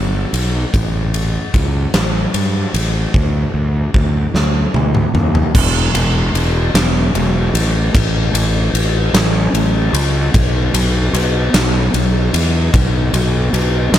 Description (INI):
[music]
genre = post-rock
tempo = 50 BPM (dotted quarters)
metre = 6/8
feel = straight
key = unclear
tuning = A4 = 440 Hz
[part]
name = fuzz fingered electric bass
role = bass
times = 0.0-14.0 s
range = E1 to G2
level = -15 LUFS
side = equal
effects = overdrive
[part]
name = huge arena drum kit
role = drums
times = 0.3-14.0 s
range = crash cymbal, kick drum, ride cymbal, snare drum, toms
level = -16 LUFS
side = equal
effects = none
[sound]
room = little or no reverb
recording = none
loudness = -13 LUFS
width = side -11 dB against mid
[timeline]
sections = 0.0-5.5 A section; 5.5-14.0 B section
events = build-up 0.0-5.5; drum fill 4.3-5.5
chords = none